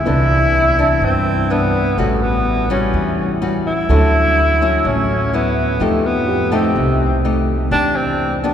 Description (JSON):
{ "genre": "bossa nova", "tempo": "126 BPM", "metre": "4/4", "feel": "straight", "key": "A minor", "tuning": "A4 = 439 Hz", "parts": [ { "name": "breathy tenor saxophone", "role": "melody", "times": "0.0-8.4 s", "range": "A3 to E4", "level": "-17 LUFS", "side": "equal", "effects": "none" }, { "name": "nylon-string guitar", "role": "accompaniment", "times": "0.0-8.5 s", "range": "G2 to G4", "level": "-19 LUFS", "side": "left 2 dB", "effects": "none" }, { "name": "warm baby grand piano", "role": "accompaniment", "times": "0.1-7.9 s", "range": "G4 to B4", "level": "-29 LUFS", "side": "equal", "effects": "none" }, { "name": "upright bass", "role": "bass", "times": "0.1-8.5 s", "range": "A1 to G2", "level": "-19 LUFS", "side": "right 1 dB", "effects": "none" } ], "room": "wet cathedral reverb, RT60 6.8 s", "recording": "recorded in a church or concert hall", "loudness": "-14 LUFS", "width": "side -9 dB against mid", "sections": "0.0-8.5 A section", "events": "none", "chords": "0.1 Cmaj9; 2.0 A13; 3.9 Dmaj9; 5.8 F9; 7.7 Em7", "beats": "| 0.06 0.54 1.02 1.50 | 1.97 2.45 2.93 3.41 | 3.89 4.37 4.84 5.32 | 5.80 6.28 6.76 7.24 | 7.71 8.19" }